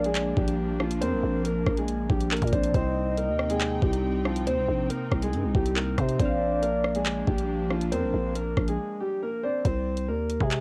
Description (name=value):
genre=hip hop, drill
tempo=139 BPM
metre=4/4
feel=half-time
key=C minor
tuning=A4 = 436 Hz
part: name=clear concert grand piano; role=melody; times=0.0-10.6 s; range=F3 to C5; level=-33 LUFS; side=equal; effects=cassette tape
part: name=soft octave-layered synth lead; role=second line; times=0.0-9.6 s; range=Bb4 to Eb5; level=-33 LUFS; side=equal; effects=chorus, tremolo, cassette tape, tape echo
part: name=concert harp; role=accompaniment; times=0.0-9.6 s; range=C3 to F5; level=-42 LUFS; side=equal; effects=none
part: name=airy breathy pad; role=sustained chords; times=0.0-9.6 s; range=C3 to G5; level=-36 LUFS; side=equal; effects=chorus, cassette tape
part: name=growling 808-style bass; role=bass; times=0.0-10.6 s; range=Bb1 to C3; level=-31 LUFS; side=equal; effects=none
part: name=drill drum kit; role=drums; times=0.0-10.6 s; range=handclaps, hi-hat, kick drum, rim click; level=-30 LUFS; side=equal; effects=overdrive, cassette tape
room=little or no reverb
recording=home recording on cassette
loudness=-27 LUFS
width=mono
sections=0.0-9.7 A section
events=break 8.8-9.7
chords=0.0 Bb; 2.7 Cm; 6.2 Bb; 9.7 Cm